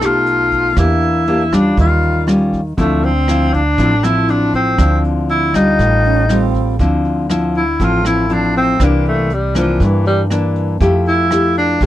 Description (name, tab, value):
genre	bossa nova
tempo	120 BPM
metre	4/4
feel	straight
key	D minor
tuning	A4 = 440 Hz
part	breathy tenor saxophone	melody	0.0-11.9 s	E3 to F4	-16 LUFS	left 1 dB	none
part	nylon-string guitar	accompaniment	0.0-11.9 s	G2 to G4	-16 LUFS	left 1 dB	none
part	upright bass	bass	0.0-11.9 s	A1 to G2	-18 LUFS	right 1 dB	none
part	vintage brush drum kit	drums	0.0-11.9 s	hi-hat, kick drum, rim click	-21 LUFS	right 1 dB	none
part	breathy wooden-headed alto flute	second line	6.0-6.8 s	B#3 to C#4	-20 LUFS	right 17 dB	none
room	light reverb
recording	dry, close 1970s-style studio recording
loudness	-12 LUFS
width	side -13 dB against mid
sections	0.0-6.8 A section; 6.8-11.9 B section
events	tenor saxophone solo 6.8-11.9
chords	0.0 Baug7; 0.8 Em7b5; 1.8 Eb9; 2.8 Dm9; 5.8 A7alt; 6.8 Dm9; 8.8 C9; 10.8 Fmaj9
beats	0.26 | 0.77 1.27 1.77 2.27 | 2.78 3.28 3.78 4.28 | 4.79 5.29 5.79 6.29 | 6.79 7.29 7.80 8.30 | 8.80 9.30 9.80 10.30 | 10.81 11.31 11.81